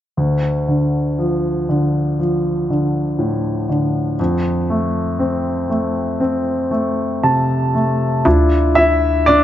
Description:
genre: pop ballad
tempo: 59 BPM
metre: 4/4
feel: straight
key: D minor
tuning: A4 = 440 Hz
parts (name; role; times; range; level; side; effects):
- warm baby grand piano; accompaniment; 0.2-9.4 s; D2 to A5; -15 LUFS; equal; none
- hollow knocking FM bass; bass; 8.3-9.4 s; D2; -16 LUFS; right 1 dB; none
room: moderate plate reverb, RT60 2.6 s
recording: nothing above 7.6 kHz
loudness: -15 LUFS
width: side -11 dB against mid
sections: 0.2-8.3 A section; 8.3-9.4 B section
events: grand piano fill 6.7-8.3; grand piano solo 8.3-9.4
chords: 0.2 Dm; 4.2 F; 8.3 Dmadd9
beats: | 0.16 1.18 2.18 3.19 | 4.19 5.20 6.21 7.23 | 8.26 9.28

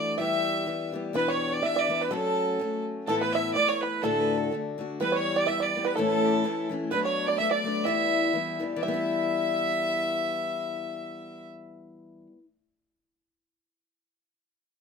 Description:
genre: celtic folk, Celtic polka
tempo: 125 BPM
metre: 2/4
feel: swing 55% on 8ths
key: E dorian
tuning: A4 = 440 Hz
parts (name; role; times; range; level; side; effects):
- bright fiddle; melody; 0.0-11.5 s; A4 to E5; -28 LUFS; right 3 dB; none
- bluegrass banjo; second line; 0.0-12.2 s; A4 to E5; -32 LUFS; right 8 dB; none
- clear fiddle; second line; 0.0-11.5 s; G4 to E5; -32 LUFS; left 4 dB; none
- picked steel-string acoustic guitar; accompaniment; 0.0-12.4 s; D2 to G4; -30 LUFS; left 4 dB; none
room: light reverb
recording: minimal, uncompressed stereo recording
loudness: -24 LUFS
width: side -5 dB against mid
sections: 0.0-1.1 A section; 1.1-8.8 A section; 8.8-10.7 B section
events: none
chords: 0.2 Em; 1.1 Em7; 2.1 F#m; 3.1 Asus2; 4.0 D; 5.0 Em; 6.0 A; 6.9 Bm7; 7.9 Em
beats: | 0.18 0.67 | 1.15 1.63 | 2.11 2.60 | 3.08 3.56 | 4.04 4.52 | 5.00 5.48 | 5.96 6.43 | 6.91 7.39 | 7.87 8.35 | 8.83 9.30 | 9.78 10.26

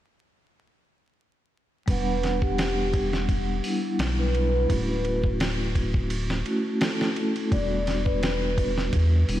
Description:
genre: trip hop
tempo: 85 BPM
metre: 4/4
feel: swing 54% on 16ths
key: E dorian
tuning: A4 = 439 Hz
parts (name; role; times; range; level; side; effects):
- pure breathy sine lead; melody; 1.9-8.7 s; G4 to D5; -30 LUFS; equal; lush chorus, tape echo
- vibraphone with soft mallets; accompaniment; 1.9-9.4 s; G3 to F#5; -28 LUFS; equal; tremolo, vintage 12-bit sampler grit, low-pass filter, tape echo
- round analog bass; bass; 1.9-9.4 s; D1 to E2; -26 LUFS; equal; none
- dusty soul sampler-style drum kit; drums; 1.9-9.4 s; hi-hat, kick drum, ride cymbal, snare drum; -28 LUFS; equal; small room ambience
room: moderate lush hall reverb, RT60 2.4 s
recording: dreamy mix soaked in reverb, vinyl crackle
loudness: -23 LUFS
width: side -13 dB against mid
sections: 1.9-9.4 A section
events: none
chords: 1.9 Em7; 4.7 Dmaj7; 7.5 Em7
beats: | 1.87 2.58 3.28 3.99 | 4.70 5.40 6.11 6.81 | 7.52 8.22 8.93

